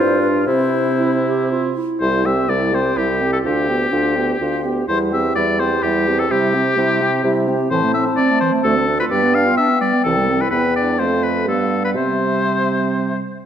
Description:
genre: quick classical-period movement for wind quintet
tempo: 115-130 BPM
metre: 3/4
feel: rubato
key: C major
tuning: A4 = 440 Hz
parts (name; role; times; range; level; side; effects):
- mellow hollow silver concert flute; melody; 0.0-13.2 s; B4 to A5; -26 LUFS; left 6 dB; none
- clear oboe; second line; 0.0-13.2 s; E4 to F5; -20 LUFS; left 3 dB; none
- mellow French horn; accompaniment; 0.0-13.2 s; G3 to D4; -22 LUFS; equal; none
- mellow clarinet; accompaniment; 0.0-13.2 s; E3 to G4; -23 LUFS; right 6 dB; none
- warm bassoon; bass; 0.0-13.2 s; C2 to C3; -21 LUFS; right 2 dB; none
room: moderate concert hall reverb, RT60 1.8 s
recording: none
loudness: -15 LUFS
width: side -9 dB against mid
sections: 0.0-2.0 A section; 2.0-13.5 B section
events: none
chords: 0.5 C; 3.4 G7/D; 4.9 C/E; 6.3 C; 7.7 Am; 8.7 Dm7; 9.1 G7; 10.1 C; 10.5 Em; 11.0 F; 11.5 G7; 12.0 C

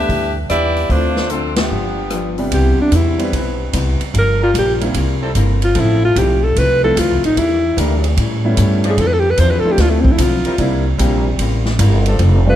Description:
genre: jazz, big band swing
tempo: 149 BPM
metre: 4/4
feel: swing 66% on 8ths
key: C major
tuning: A4 = 443 Hz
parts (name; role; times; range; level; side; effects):
- clear saxophone section; melody; 0.0-2.3 s; F3 to E5; -19 LUFS; equal; none
- clear grand piano; accompaniment; 0.0-12.6 s; C3 to G4; -22 LUFS; right 1 dB; none
- upright bass; bass; 0.0-12.6 s; F1 to A2; -16 LUFS; equal; none
- archtop guitar, miked and amplified; accompaniment; 0.1-12.5 s; G2 to A4; -24 LUFS; left 5 dB; none
- swinging big-band drum kit; drums; 0.1-12.3 s; hi-hat, kick drum, ride cymbal, rim click, snare drum; -23 LUFS; right 1 dB; none
- warm alto saxophone; melody; 2.5-12.6 s; A3 to C5; -16 LUFS; equal; none
- brilliant trombone section; sustained chords; 3.2-12.6 s; F3 to D5; -28 LUFS; left 2 dB; none
room: light reverb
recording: dark, warm production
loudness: -13 LUFS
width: side -12 dB against mid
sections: 0.0-2.5 A section; 2.5-12.6 B section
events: band accent 1.5; alto saxophone solo 2.5-12.6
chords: 0.0 G6; 0.9 Dm7; 1.7 G7; 2.5 Cmaj7; 4.1 Gm7; 4.9 C7; 5.8 Fmaj7; 7.4 Em7b5; 8.2 A7; 9.0 Dm9; 10.6 C7

